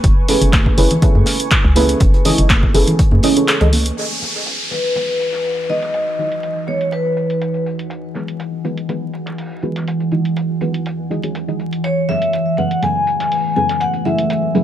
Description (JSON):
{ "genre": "deep house", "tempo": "122 BPM", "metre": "4/4", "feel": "swing 53% on 16ths", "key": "unclear", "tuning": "A4 = 440 Hz", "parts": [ { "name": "deep dark ambient pad", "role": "sustained chords", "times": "0.0-14.6 s", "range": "E3 to C#6", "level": "-23 LUFS", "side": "right 1 dB", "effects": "chorus, built-in reverb, vintage 12-bit sampler grit, sidechain pumping" }, { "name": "hollow knocking FM bass", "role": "bass", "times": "0.0-3.9 s", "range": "F#1 to F#2", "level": "-16 LUFS", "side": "equal", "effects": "sidechain pumping" }, { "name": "electronic kick drum", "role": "drums", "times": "0.0-3.1 s", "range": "none", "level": "-14 LUFS", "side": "equal", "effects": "none" }, { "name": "punchy analog drum machine", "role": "drums", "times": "0.0-14.4 s", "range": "handclaps, hi-hat", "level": "-20 LUFS", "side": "equal", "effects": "low-pass filter on hats, low-pass filter on snare" }, { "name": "warm soul drum kit", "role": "drums", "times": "0.0-14.6 s", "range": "hi-hat, snare drum", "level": "-34 LUFS", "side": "equal", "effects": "sidechain pumping on hats, high-pass filter on hats, low-pass filter on hats, high-pass filter on snare, low-pass filter on snare, high-pass filter on room, low-pass filter on room" }, { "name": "deep mellow chord stab", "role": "stabs", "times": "0.3-14.6 s", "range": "F#3 to E5", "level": "-20 LUFS", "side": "right 1 dB", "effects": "chorus, phaser, cassette tape, sidechain pumping, tape echo" }, { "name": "congas", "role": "percussion", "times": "0.5-3.8 s", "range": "none", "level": "-23 LUFS", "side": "right 1 dB", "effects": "none" }, { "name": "downlifter", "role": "sound effects", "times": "4.0-7.9 s", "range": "none", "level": "-25 LUFS", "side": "equal", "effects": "none" }, { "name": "vibraphone with medium mallets", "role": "melody", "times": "4.7-7.6, 11.8-14.6 s", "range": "B4 to G#5", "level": "-18 LUFS", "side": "left 1 dB", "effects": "tape echo" } ], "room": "light reverb, small room ambience", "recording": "vinyl crackle", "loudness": "-14 LUFS", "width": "side -11 dB against mid", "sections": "0.0-4.0 A section; 4.0-14.6 B section", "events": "kick drops out 3.5-4.0; filter sweep on synth stab 4.0-14.6", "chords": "0.0 F#m11; 4.0 Emaj9; 11.8 F#m11", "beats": "| 0.04 0.53 1.02 1.51 | 2.01 2.50 2.99 3.48 | 3.97 4.46 4.96 5.45 | 5.94 6.43 6.92 7.42 | 7.91 8.40 8.89 9.38 | 9.88 10.37 10.86 11.35 | 11.84 12.33 12.83 13.32 | 13.81 14.30" }